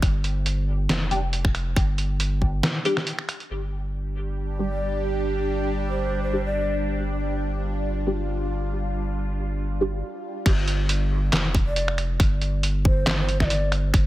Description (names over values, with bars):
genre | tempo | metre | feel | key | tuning
deep dubstep | 138 BPM | 4/4 | swing 54% on 16ths, half-time | unclear | A4 = 440 Hz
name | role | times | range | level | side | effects
saturated sub bass | bass | 0.0-14.1 s | F1 to G1 | -25 LUFS | equal | none
electronic kick drum | drums | 0.0-2.5, 10.5-14.0 s | none | -20 LUFS | equal | none
trip hop sampler-style drum kit | drums | 0.0-3.5, 10.5-14.0 s | crash cymbal, finger snaps, handclaps, hi-hat, snare drum | -26 LUFS | equal | none
filtered dub chord stab | stabs | 1.1-9.9 s | G3 to G4 | -29 LUFS | left 1 dB | phaser, ensemble chorus, dub echo
bowed-like drone | sustained chords | 4.1-10.4 s | G3 to G4 | -30 LUFS | right 1 dB | built-in reverb, phaser
breathy mellow long shakuhachi | melody | 4.7-6.8, 11.7-13.7 s | C5 to E5 | -32 LUFS | equal | dub echo
room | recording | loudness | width
digital ambience | none | -22 LUFS | side -16 dB against mid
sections
0.0-3.5 A section; 3.5-10.5 B section; 10.5-14.1 C section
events
break 10.0-10.5; drop 10.5-14.1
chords
0.0 G5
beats
| 0.03 0.46 0.89 1.33 | 1.76 2.20 2.63 3.07 | 3.50 3.94 4.37 4.81 | 5.24 5.68 6.11 6.55 | 6.98 7.42 7.85 8.29 | 8.72 9.15 9.59 10.03 | 10.46 10.89 11.33 11.76 | 12.20 12.63 13.07 13.50 | 13.94